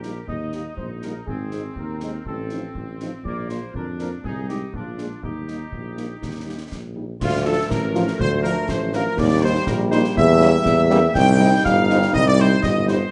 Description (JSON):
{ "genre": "military-style march for wind band", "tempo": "121 BPM", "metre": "2/4", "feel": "straight", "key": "Eb major", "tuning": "A4 = 441 Hz", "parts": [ { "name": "warm trumpet section", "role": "melody", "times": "0.0-13.0 s", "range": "Eb4 to G5", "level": "-29 LUFS", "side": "equal", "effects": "none" }, { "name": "warm woodwind section", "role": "second line", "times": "0.0-13.1 s", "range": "Bb3 to G5", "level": "-29 LUFS", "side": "equal", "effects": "none" }, { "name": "mellow French horn section", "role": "accompaniment", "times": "0.0-13.0 s", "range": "F3 to F4", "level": "-29 LUFS", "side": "equal", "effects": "none" }, { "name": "warm tuba", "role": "bass", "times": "0.0-13.0 s", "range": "G1 to F2", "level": "-24 LUFS", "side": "equal", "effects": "none" }, { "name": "concert snare drum, concert bass drum and clash cymbals", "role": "drums", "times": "0.0-13.0 s", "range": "none", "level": "-32 LUFS", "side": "equal", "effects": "none" }, { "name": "dark trombone section", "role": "sustained chords", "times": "7.2-13.1 s", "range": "F3 to Eb4", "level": "-27 LUFS", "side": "equal", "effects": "none" } ], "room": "moderate large studio reverb, RT60 1.1 s", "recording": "nothing above 10.4 kHz", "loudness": "-20 LUFS", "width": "mono", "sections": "0.0-7.2 A section; 7.2-13.1 B section", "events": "none", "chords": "0.0 Eb; 1.3 Ab; 2.3 F7/A; 3.2 Bb; 4.2 Ab/C; 4.7 Bb7; 5.2 Eb; 7.2 Dm; 9.2 Eb; 10.2 Edim7; 11.2 Cm" }